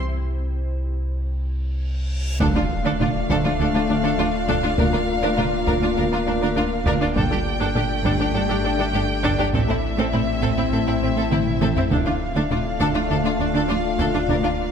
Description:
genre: cinematic, hybrid orchestral and electronic film score.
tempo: 101 BPM.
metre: 4/4.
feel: straight.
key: D minor.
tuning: A4 = 442 Hz.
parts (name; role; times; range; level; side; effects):
glassy FM pad; sustained chords; 0.0-14.7 s; A3 to E5; -29 LUFS; left 4 dB; ensemble chorus, built-in reverb.
punchy sub bass; bass; 0.0-14.7 s; D1 to C2; -28 LUFS; equal; none.
reverse cymbal and impact; sound effects; 1.9-4.8 s; none; -30 LUFS; equal; none.
rich chamber violin section; melody; 2.4-14.7 s; E5 to G5; -28 LUFS; equal; none.
bright symphonic violin section; second line; 2.4-14.5 s; C4 to Bb4; -30 LUFS; left 3 dB; none.
rich symphonic viola section; accompaniment; 2.4-14.5 s; C4 to D4; -27 LUFS; right 2 dB; none.
mellow French horn section; sustained chords; 2.4-14.7 s; A3 to F4; -28 LUFS; left 4 dB; none.
tight sequenced synth; arpeggios; 2.4-14.5 s; D3 to Bb4; -32 LUFS; left 1 dB; none.
rich symphonic double bass section; bass; 2.4-14.3 s; G1 to D2; -28 LUFS; right 3 dB; none.
warm symphonic cello section; bass; 2.4-14.5 s; D2 to A2; -28 LUFS; right 3 dB; none.
taiko ensemble; drums; 2.4-14.7 s; none; -27 LUFS; equal; none.
room: moderate scoring stage reverb, RT60 2.0 s.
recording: none.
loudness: -19 LUFS.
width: side -7 dB against mid.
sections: 0.0-2.4 A section; 2.4-14.7 B section.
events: break 0.0-2.4; drum fill 1.8-2.4, 11.3-11.9; reverse cymbal 1.9-2.4; impact 2.4-4.8.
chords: 0.0 N.C.; 2.4 Dm; 4.8 Bb/D; 7.2 Gsus2; 9.5 Am; 11.9 Dm.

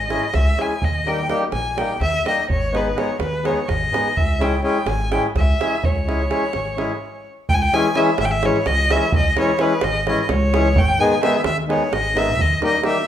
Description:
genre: balkan folk, Balkan wedding band.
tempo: 254 BPM (eighths).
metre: 7/8.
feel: straight.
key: C# dorian sharp4.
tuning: A4 = 438 Hz.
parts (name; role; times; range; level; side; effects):
rich violin; melody; 0.0-13.1 s; B4 to G#5; -22 LUFS; left 1 dB; none.
upright bass; bass; 0.0-12.5 s; G#1 to D#2; -23 LUFS; equal; none.
accordion; accompaniment; 0.1-13.0 s; D#3 to G#4; -22 LUFS; left 1 dB; none.
davul; percussion; 0.1-13.0 s; none; -24 LUFS; right 3 dB; none.
room: moderate large studio reverb, RT60 1.1 s.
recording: band playing live in one room.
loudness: -17 LUFS.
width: side -10 dB against mid.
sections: 0.0-7.5 A section; 7.5-13.1 B section.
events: speeding up 0.0-13.1; stop 7.0-7.5.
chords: 0.0 C#m; 0.8 D#; 2.5 G#m; 4.2 C#m; 10.8 G#m; 12.4 D#.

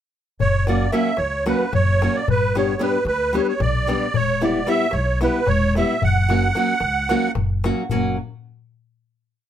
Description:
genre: balkan folk, Balkan wedding band.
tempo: 224 BPM (eighths).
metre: 7/8.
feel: straight.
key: F# phrygian dominant.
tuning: A4 = 440 Hz.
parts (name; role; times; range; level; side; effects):
musette accordion; melody; 0.4-7.3 s; B4 to F#5; -21 LUFS; right 3 dB; none.
upright bass; bass; 0.4-8.2 s; E1 to D2; -22 LUFS; equal; none.
darbuka; percussion; 0.4-8.2 s; none; -27 LUFS; left 10 dB; none.
nylon-string guitar; accompaniment; 0.7-8.2 s; F#3 to G4; -22 LUFS; left 1 dB; none.
room: light reverb.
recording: none.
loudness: -18 LUFS.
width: side -10 dB against mid.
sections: 0.4-7.9 A section; 7.9-9.5 final chord.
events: none.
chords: 0.4 F#; 2.3 G; 4.1 Em; 6.0 F#.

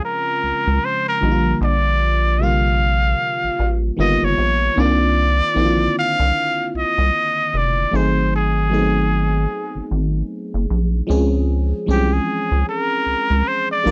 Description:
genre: R&B, neo-soul.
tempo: 76 BPM.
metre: 4/4.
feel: swing 60% on 16ths.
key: unclear.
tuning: A4 = 440 Hz.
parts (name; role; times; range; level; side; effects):
trumpet with straight mute; melody; 0.0-13.9 s; G4 to F5; -22 LUFS; equal; none.
FM electric piano; accompaniment; 0.0-13.9 s; C3 to Bb4; -25 LUFS; equal; chorus, phaser.
rubbery square bass; bass; 0.4-13.9 s; F1 to Db2; -21 LUFS; equal; none.
room: little or no reverb.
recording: dry, close 1970s-style studio recording.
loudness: -19 LUFS.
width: mono.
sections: 0.0-13.9 A section.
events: none.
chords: 0.0 Dbmaj7; 1.2 Bb6; 4.0 G7alt; 4.8 Cm11; 7.9 Ab7b9; 11.1 Dbmaj7.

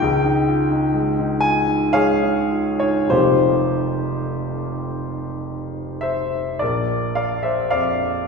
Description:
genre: classical, impressionist solo piano.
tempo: 48-67 BPM.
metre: 3/4.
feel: rubato.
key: unclear.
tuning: A4 = 440 Hz.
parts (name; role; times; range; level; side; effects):
warm grand piano; solo; 0.0-8.3 s; F1 to Ab5; -18 LUFS; left 1 dB; none.
room: wet recital hall reverb, RT60 1.5 s.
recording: recorded in a church or concert hall.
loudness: -18 LUFS.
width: side -4 dB against mid.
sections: 0.0-6.6 A section; 6.6-8.3 B section.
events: none.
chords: 0.0 Dbadd9; 3.1 F9sus4; 6.6 Bb.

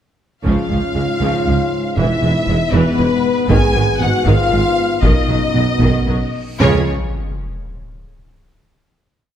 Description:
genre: cinematic, epic orchestral film score.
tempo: 78 BPM (dotted quarters).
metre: 6/8.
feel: straight.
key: Db mixolydian.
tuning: A4 = 439 Hz.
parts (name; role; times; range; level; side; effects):
rich symphonic violin section; second line; 0.4-6.9 s; B4 to Ab5; -24 LUFS; left 3 dB; none.
mellow trombone section; sustained chords; 0.4-6.8 s; F2 to Db4; -24 LUFS; right 4 dB; none.
warm French horn section; sustained chords; 0.4-6.8 s; B3 to Ab4; -21 LUFS; left 4 dB; none.
rich symphonic cello section; bass; 0.4-6.9 s; Db2 to Db3; -22 LUFS; right 2 dB; none.
warm tuba; bass; 0.4-6.8 s; E1 to Db2; -22 LUFS; right 3 dB; none.
clear symphonic violin section; melody; 0.5-6.9 s; B4 to Ab5; -24 LUFS; left 4 dB; none.
rich symphonic viola section; accompaniment; 0.5-6.9 s; Db3 to Ab4; -25 LUFS; right 1 dB; none.
rich symphonic double bass section; bass; 0.5-6.9 s; E1 to Db2; -21 LUFS; right 2 dB; none.
taiko ensemble; drums; 0.5-6.3 s; none; -19 LUFS; equal; none.
reverse cymbal and sub drop; sound effects; 6.6-8.2 s; none; -26 LUFS; equal; none.
room: moderate scoring stage reverb, RT60 1.9 s.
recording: none.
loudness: -13 LUFS.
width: side -10 dB against mid.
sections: 0.5-6.6 theme; 6.6-8.2 final chord.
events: reverse cymbal 6.6; impact 6.6-8.2.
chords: 0.5 Db; 2.0 E; 3.5 Abm; 5.0 Cb; 6.6 Db.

